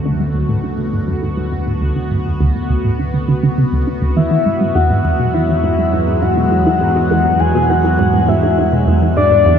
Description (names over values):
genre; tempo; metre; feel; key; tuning
ambient, sequencer-driven space music; 102 BPM; 4/4; straight; unclear; A4 = 440 Hz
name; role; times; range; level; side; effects
phased analog pad; sustained chords; 0.0-9.6 s; D3 to F#4; -21 LUFS; equal; phaser, chorus, shimmer reverb
fat analog bass; bass; 0.0-9.6 s; D2 to E2; -20 LUFS; equal; none
resonant blip pluck; riff; 0.1-9.5 s; D2 to E3; -16 LUFS; right 1 dB; phaser, ping-pong delay
soft octave-layered synth lead; melody; 4.2-9.6 s; D5 to G#5; -15 LUFS; left 3 dB; chorus, phaser, shimmer reverb, ping-pong delay
room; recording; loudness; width
wet huge ambient reverb, RT60 8.0 s; in a vast, echoing space, cassette tape; -13 LUFS; side -8 dB against mid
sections
0.0-9.6 A section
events
fade-in on analog synth pad 0.0-9.6; filter sweep on synth arpeggio sound 0.0-9.6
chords
0.0 D; 4.2 Eadd9